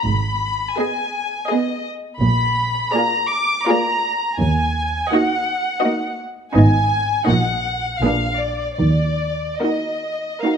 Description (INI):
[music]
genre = classical, slow romantic movement for string orchestra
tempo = 82 BPM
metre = 3/4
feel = uneven beats, rubato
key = Eb minor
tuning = A4 = 442 Hz
[part]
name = muted chamber violin section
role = melody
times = 0.0-10.6 s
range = D5 to D6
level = -21 LUFS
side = left 2 dB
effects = none
[part]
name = muted chamber cello section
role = bass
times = 0.0-9.5 s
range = Eb2 to Eb3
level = -20 LUFS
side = right 1 dB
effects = none
[part]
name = muted studio double bass section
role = bass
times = 0.0-9.5 s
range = Ab1 to Eb2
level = -22 LUFS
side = right 2 dB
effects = none
[part]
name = muted chamber violin section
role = second line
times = 0.8-10.6 s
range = Eb4 to Eb5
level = -25 LUFS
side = left 1 dB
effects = none
[part]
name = muted studio viola section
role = accompaniment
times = 0.8-10.6 s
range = Bb3 to Ab4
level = -21 LUFS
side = right 2 dB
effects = none
[sound]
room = moderate recital hall reverb, RT60 1.6 s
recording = close, detailed microphones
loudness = -17 LUFS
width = side -7 dB against mid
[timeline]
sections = 0.0-10.6 A section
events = none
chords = 0.0 Abm; 2.2 Bb7b9; 4.4 Ebm; 6.5 Abm; 7.3 Ebm/Bb; 8.0 Bb7b9; 8.8 Ebm